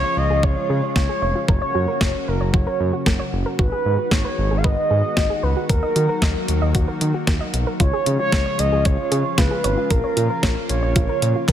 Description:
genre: synth-pop.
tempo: 114 BPM.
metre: 4/4.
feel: straight.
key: unclear.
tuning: A4 = 436 Hz.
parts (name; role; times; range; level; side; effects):
mellow horn-like synth lead; melody; 0.0-11.5 s; Bb4 to F5; -23 LUFS; right 1 dB; chorus, phaser.
lush unison pad; sustained chords; 0.0-11.5 s; Db3 to Gb4; -27 LUFS; left 1 dB; chorus.
soft round pluck; arpeggios; 0.0-11.5 s; F4 to Eb5; -30 LUFS; right 2 dB; chorus, digital delay.
smooth synth bass; bass; 0.0-11.5 s; F1 to Eb3; -22 LUFS; equal; none.
clean 12-bit digital drum machine; drums; 0.4-11.5 s; handclaps, hi-hat, kick drum, snare drum; -21 LUFS; equal; overdrive.
room: light reverb, digital ambience.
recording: dense, heavily limited modern master.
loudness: -17 LUFS.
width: side -10 dB against mid.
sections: 0.0-11.5 A section.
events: none.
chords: 0.0 Db; 1.5 Gb; 3.6 Abm7; 5.7 Ebm; 7.8 Db; 9.9 Bbm.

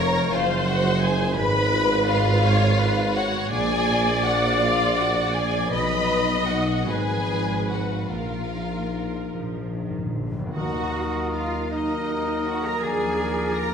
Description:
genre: classical.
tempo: 48-57 BPM (dotted quarters).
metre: 6/8.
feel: rubato.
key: Eb minor.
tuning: A4 = 440 Hz.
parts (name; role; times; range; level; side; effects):
warm symphonic violin section; melody; 0.0-13.7 s; Eb5 to Cb6; -30 LUFS; left 3 dB; none.
warm symphonic violin section; second line; 0.0-13.7 s; F4 to Bb5; -29 LUFS; left 3 dB; none.
rich symphonic viola section; accompaniment; 0.0-13.7 s; F3 to D#5; -26 LUFS; equal; none.
concert harp; arpeggios; 0.0-13.7 s; Ab2 to F6; -31 LUFS; left 5 dB; none.
rich symphonic double bass section; bass; 0.0-13.7 s; F1 to Eb2; -30 LUFS; right 3 dB; none.
warm symphonic cello section; bass; 0.0-13.7 s; F2 to Bb4; -29 LUFS; right 3 dB; none.
warm tuba; bass; 0.0-10.3 s; F1 to B1; -29 LUFS; right 2 dB; none.
timpani; percussion; 9.3-11.7 s; Bb2 to Eb3; -34 LUFS; equal; none.
clear oboe; second line; 10.6-13.7 s; D5 to Eb5; -34 LUFS; right 2 dB; none.
mellow hollow concert flute; second line; 10.6-13.7 s; Bb5; -33 LUFS; left 3 dB; none.
warm clarinet; second line; 10.6-13.7 s; Bb4; -33 LUFS; left 3 dB; none.
dark French horn section; sustained chords; 10.6-13.7 s; Bb3 to Eb4; -32 LUFS; left 2 dB; none.
room: wet scoring stage reverb, RT60 1.4 s.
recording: minimal, uncompressed stereo recording.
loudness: -21 LUFS.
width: side -7 dB against mid.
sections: 0.0-10.6 A section; 10.6-13.7 B section.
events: timpani fill 9.3-10.6.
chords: 0.0 Db/F; 1.4 Fdim/Ab; 3.5 Bb7; 5.7 B; 6.9 Fdim/Ab; 8.1 Bbsus4; 9.3 Bb; 10.6 Ebm; 12.8 Bb7/Eb.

